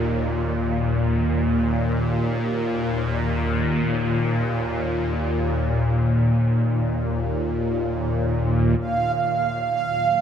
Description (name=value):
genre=dark ambient drone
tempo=free time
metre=none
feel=none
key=Eb minor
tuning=A4 = 437 Hz
part: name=bowed-like drone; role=drone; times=0.0-10.2 s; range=Eb2 to Bb2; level=-20 LUFS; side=equal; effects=built-in reverb, phaser
part: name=sweeping resonant pad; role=sustained chords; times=8.8-10.2 s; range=Eb3 to Gb3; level=-37 LUFS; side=right 2 dB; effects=lush chorus
part: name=bubbling stepped-filter texture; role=texture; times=8.8-10.2 s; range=F5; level=-21 LUFS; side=right 6 dB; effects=chorus, built-in reverb
room=wet huge ambient reverb, RT60 8.1 s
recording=none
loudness=-20 LUFS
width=side -8 dB against mid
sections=0.0-8.8 A section; 8.8-10.2 B section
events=none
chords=0.0 Eb5; 8.8 Ebmadd9